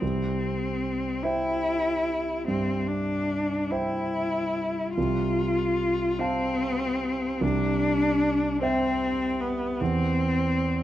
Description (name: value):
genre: classical, romantic duo for cello and grand piano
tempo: 49 BPM (dotted quarters)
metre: 12/8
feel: rubato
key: C major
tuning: A4 = 440 Hz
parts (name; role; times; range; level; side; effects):
- rich cello; melody; 0.0-10.8 s; B3 to F4; -26 LUFS; left 1 dB; none
- warm concert grand piano; accompaniment; 0.0-10.8 s; C2 to A5; -28 LUFS; right 1 dB; none
room: moderate recital hall reverb, RT60 1.7 s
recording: dark, warm production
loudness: -24 LUFS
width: side -12 dB against mid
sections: 0.0-10.8 A section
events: none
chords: 0.0 C; 5.0 F/C; 7.4 C; 9.8 C/E